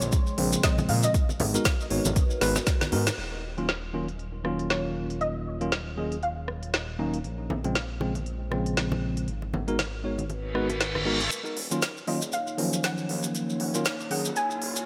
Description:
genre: deep house.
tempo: 118 BPM.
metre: 4/4.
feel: swing 57% on 16ths.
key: Eb minor.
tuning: A4 = 440 Hz.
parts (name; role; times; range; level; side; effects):
soft round pluck; melody; 0.0-7.0, 12.1-14.8 s; Db5 to Ab5; -36 LUFS; equal; ensemble chorus, vintage 12-bit sampler grit, dub echo.
dark analog pad; sustained chords; 0.0-14.9 s; Gb3 to C6; -41 LUFS; equal; chorus, phaser, sidechain pumping.
smooth gliding synth bass; bass; 0.0-14.8 s; Eb1 to Bb2; -35 LUFS; equal; tube saturation, sidechain pumping, high-pass filter.
deep house drum kit; drums; 0.0-14.8 s; hi-hat, rim click, snare drum; -32 LUFS; equal; high-pass filter on hats, low-pass filter on hats, high-pass filter on snare, low-pass filter on snare.
congas; percussion; 0.0-3.2, 7.5-11.3 s; none; -36 LUFS; equal; sidechain pumping on perc.
maracas; percussion; 0.0-3.2, 11.3-14.8 s; none; -37 LUFS; equal; none.
electronic kick drum; drums; 0.1-2.8 s; none; -27 LUFS; equal; none.
tine electric piano; stabs; 0.4-14.3 s; Bb2 to Db5; -33 LUFS; equal; sidechain pumping, low-pass filter, digital delay.
reverse cymbal and riser; sound effects; 10.5-14.9 s; none; -36 LUFS; equal; none.
room: light reverb.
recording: none.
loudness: -28 LUFS.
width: mono.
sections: 0.0-3.2 A section; 3.2-11.3 B section; 11.3-14.9 C section.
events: filter sweep on tine electric piano 0.0-3.2, 3.2-11.3; drum fill 2.4-3.2; band accent 3.0; reverse cymbal 10.5-11.3; build-up 11.3-14.9; riser 11.3-14.9.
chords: 0.0 Bbm9; 1.1 Abm9; 3.2 Ebm9; 7.2 Bbm9; 9.3 Abm9; 11.3 Ebm9.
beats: 0.13 0.64 | 1.14 1.65 2.16 2.67 | 3.18 3.69 4.19 4.70 | 5.21 5.72 6.23 6.74 | 7.25 7.75 8.26 8.77 | 9.28 9.79 10.30 10.80 | 11.31 11.82 12.33 12.84 | 13.35 13.86 14.36.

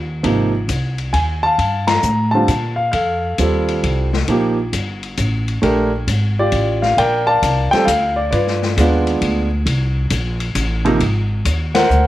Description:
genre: jazz piano trio.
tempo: 134 BPM.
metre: 3/4.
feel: swing 67% on 8ths.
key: unclear.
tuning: A4 = 440 Hz.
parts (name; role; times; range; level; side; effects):
upright bass; bass; 0.0-12.1 s; G1 to Bb2; -19 LUFS; equal; none.
warm grand piano; melody; 0.2-12.1 s; C3 to Bb5; -16 LUFS; equal; none.
open jazz drum kit; drums; 0.2-12.0 s; hi-hat, kick drum, ride cymbal, snare drum; -25 LUFS; left 5 dB; none.
room: moderate spring reverb, RT60 1.2 s, small room ambience.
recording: 1960s-style stereo.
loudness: -15 LUFS.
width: side -15 dB against mid.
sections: 0.0-7.0 A section; 7.0-12.1 B section.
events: band accent 1.8, 11.7.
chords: 0.2 Ab; 1.6 Gm9; 2.9 F7; 4.3 Bb6; 7.0 Gm9; 8.3 G7b9; 9.7 C7(no3); 11.0 Ab9.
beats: | 0.24 0.69 1.14 | 1.59 2.04 2.49 | 2.94 3.38 3.83 | 4.28 4.73 5.18 | 5.63 6.08 6.53 | 6.98 7.42 7.87 | 8.32 8.77 9.21 | 9.66 10.11 10.56 | 11.01 11.45 11.90.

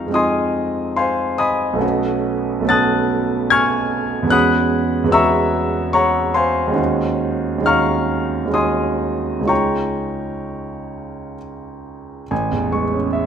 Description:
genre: classical, impressionist solo piano.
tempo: 62-75 BPM.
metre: 3/4.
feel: rubato.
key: unclear.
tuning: A4 = 439 Hz.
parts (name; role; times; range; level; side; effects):
clear grand piano; solo; 0.0-13.3 s; A1 to A6; -16 LUFS; equal; none.
room: moderate recital hall reverb, RT60 1.3 s.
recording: close, detailed microphones.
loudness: -16 LUFS.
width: side -8 dB against mid.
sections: 0.0-12.3 A section.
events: none.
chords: 0.0 Fm7; 1.8 Cb9; 4.3 E69; 6.8 Ebm11; 9.5 Dbadd9; 12.3 Amaj7.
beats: 0.15 0.99 | 1.83 2.71 3.53 | 4.33 5.14 5.96 | 6.78 7.68 8.56 | 9.50 10.45 11.39 | 12.31 13.12.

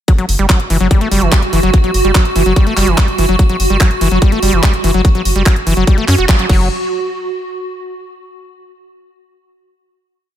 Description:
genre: psychedelic trance.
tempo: 145 BPM.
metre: 4/4.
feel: straight.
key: F# phrygian.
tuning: A4 = 441 Hz.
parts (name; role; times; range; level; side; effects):
swarming drone; sustained chords; 0.7-6.5 s; F#4; -19 LUFS; right 2 dB; built-in reverb, sidechain pumping.
overdriven acid bass; riff; 0.1-6.7 s; E3 to F#4; -17 LUFS; equal; distortion, auto-pan, sidechain pumping, digital delay.
electronic kick drum; drums; 0.1-6.6 s; none; -10 LUFS; equal; studio reverb.
garage drum kit; drums; 0.1-6.6 s; crash cymbal, handclaps, hi-hat; -19 LUFS; equal; studio reverb.
round analog bass; bass; 0.3-6.7 s; E1 to F#2; -14 LUFS; equal; none.
room: little or no reverb.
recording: none.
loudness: -10 LUFS.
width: side -11 dB against mid.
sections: 0.1-6.7 groove; 6.7-8.4 final hit.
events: band accent 6.3.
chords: 0.1 F#5; 6.5 N.C..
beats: | 0.08 0.49 0.91 1.32 | 1.74 2.15 2.56 2.98 | 3.39 3.81 4.22 4.63 | 5.05 5.46 5.87 6.29.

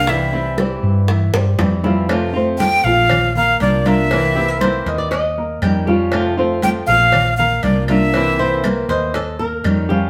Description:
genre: latin, Cuban son and guajira.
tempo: 119 BPM.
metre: 4/4.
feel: straight.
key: F major.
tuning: A4 = 440 Hz.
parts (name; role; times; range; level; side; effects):
breathy bright jazz flute; melody; 0.0-8.9 s; D5 to G5; -19 LUFS; equal; none.
flamenco guitar; accompaniment; 0.0-10.1 s; C3 to G4; -24 LUFS; equal; none.
woody fretless electric bass; bass; 0.0-10.1 s; Bb1 to G2; -23 LUFS; equal; none.
dark baby grand piano; arpeggios; 0.1-10.1 s; E3 to C6; -26 LUFS; equal; none.
bongos and cowbell; percussion; 0.1-9.9 s; none; -28 LUFS; equal; none.
congas; percussion; 0.1-10.1 s; none; -24 LUFS; equal; none.
claves; percussion; 0.6-9.9 s; none; -34 LUFS; equal; none.
flamenco guitar; second line; 4.4-10.1 s; G4 to G5; -24 LUFS; equal; none.
room: wet studio reverb, RT60 0.8 s.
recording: band playing live in one room.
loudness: -16 LUFS.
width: mono.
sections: 0.0-2.1 A section; 2.1-10.1 B section.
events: flute solo 0.0-2.1; drum fill 1.3-2.1.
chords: 0.1 C; 2.1 F; 3.1 Bb; 4.1 C7; 5.1 Eb7; 6.1 F; 7.1 Bb; 8.1 C7; 9.1 Eb7.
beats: | 0.08 0.59 1.09 1.60 | 2.10 2.61 3.11 3.62 | 4.12 4.62 5.12 5.63 | 6.13 6.63 7.14 7.64 | 8.14 8.64 9.15 9.65.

